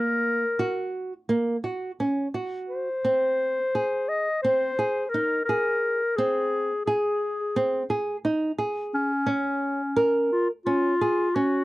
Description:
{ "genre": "contemporary instrumental, contemporary", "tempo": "173 BPM (eighths)", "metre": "9/8", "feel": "straight", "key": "unclear", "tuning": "A4 = 440 Hz", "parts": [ { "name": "mellow clarinet", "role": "melody", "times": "0.0-11.6 s", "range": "Db4 to Eb5", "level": "-25 LUFS", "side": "left 2 dB", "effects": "none" }, { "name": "nylon-string guitar", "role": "arpeggios", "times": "0.0-11.6 s", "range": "Bb3 to Bb4", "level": "-26 LUFS", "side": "right 2 dB", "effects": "none" } ], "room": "light reverb", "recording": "cassette tape", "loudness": "-23 LUFS", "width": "side -18 dB against mid", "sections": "0.0-11.6 A section", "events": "none", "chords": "0.0 N.C.; 3.0 Ab; 9.3 Db6", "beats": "0.24 0.59 0.94 1.29 1.64 1.99 2.34 2.70 | 3.05 3.40 3.75 4.10 4.45 4.79 5.14 5.49 5.83 | 6.18 6.52 6.87 7.21 7.56 7.90 8.24 8.59 8.93 | 9.28 9.63 9.97 10.32 10.67 11.02 11.36" }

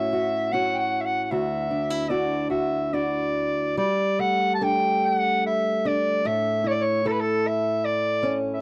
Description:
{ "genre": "celtic folk, Celtic slow air", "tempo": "74 BPM", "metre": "3/4", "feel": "uneven beats, rubato", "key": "unclear", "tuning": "A4 = 439 Hz", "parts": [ { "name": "warm soprano saxophone", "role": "melody", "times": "0.0-8.6 s", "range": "A4 to A5", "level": "-26 LUFS", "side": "equal", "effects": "none" }, { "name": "fingerpicked acoustic archtop guitar", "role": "accompaniment", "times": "0.0-8.6 s", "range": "D2 to A4", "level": "-29 LUFS", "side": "equal", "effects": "none" } ], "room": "little or no reverb", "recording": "dry, close 1970s-style studio recording", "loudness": "-24 LUFS", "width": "mono", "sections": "0.0-3.8 A section; 3.8-8.6 B section", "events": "none", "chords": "0.0 A6; 1.3 Dadd9; 3.8 Gsus2; 6.2 A", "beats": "0.52 | 1.31 2.10 2.93 | 3.78 4.61 5.45 | 6.25 7.04 7.83 | 8.61" }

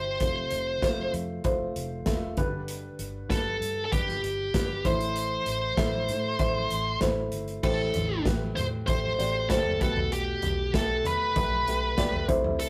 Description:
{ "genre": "piano-driven pop", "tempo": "97 BPM", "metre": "4/4", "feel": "straight", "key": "unclear", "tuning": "A4 = 440 Hz", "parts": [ { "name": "high-gain lead guitar", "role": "melody", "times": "0.0-12.7 s", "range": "G4 to C5", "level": "-31 LUFS", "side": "equal", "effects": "distortion" }, { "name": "dark upright piano", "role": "accompaniment", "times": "0.0-12.7 s", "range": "G2 to D5", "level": "-34 LUFS", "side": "equal", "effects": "none" }, { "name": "vintage muted fingered electric bass", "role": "bass", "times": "0.0-12.7 s", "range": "E1 to B2", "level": "-37 LUFS", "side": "equal", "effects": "none" }, { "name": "modern studio drum kit", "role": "drums", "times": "0.2-12.7 s", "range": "crash cymbal, hi-hat, kick drum, snare drum, toms", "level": "-33 LUFS", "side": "equal", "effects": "none" } ], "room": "moderate studio reverb, RT60 0.6 s", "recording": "rough rehearsal-room recording, tube saturation", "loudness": "-28 LUFS", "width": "mono", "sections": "0.0-7.6 A section; 7.6-12.7 B section", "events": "none", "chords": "0.2 F; 2.4 G; 4.9 Am; 7.6 Am7; 9.8 Gadd9/B", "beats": "| 0.21 0.83 1.45 2.06 | 2.68 3.30 3.92 4.54 | 5.16 5.78 6.40 7.02 | 7.64 8.26 8.88 9.50 | 10.12 10.74 11.36 11.98 | 12.60" }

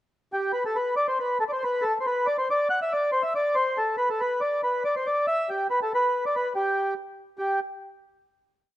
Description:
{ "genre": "celtic folk, Celtic polka", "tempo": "140 BPM", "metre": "2/4", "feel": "swing 53% on 8ths", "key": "unclear", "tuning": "A4 = 439 Hz", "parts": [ { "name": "mellow accordion", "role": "solo", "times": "0.3-7.6 s", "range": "G4 to F#5", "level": "-23 LUFS", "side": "equal", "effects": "none" } ], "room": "light reverb", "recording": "close, detailed microphones", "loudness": "-23 LUFS", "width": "side -14 dB against mid", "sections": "0.0-0.5 pickup bar; 0.5-7.4 A section; 7.4-8.2 final note", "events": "none", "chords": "none", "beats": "0.09 | 0.53 0.96 | 1.39 1.82 | 2.25 2.68 | 3.11 3.54 | 3.97 4.39 | 4.82 5.25 | 5.67 6.10 | 6.53 6.95 | 7.38" }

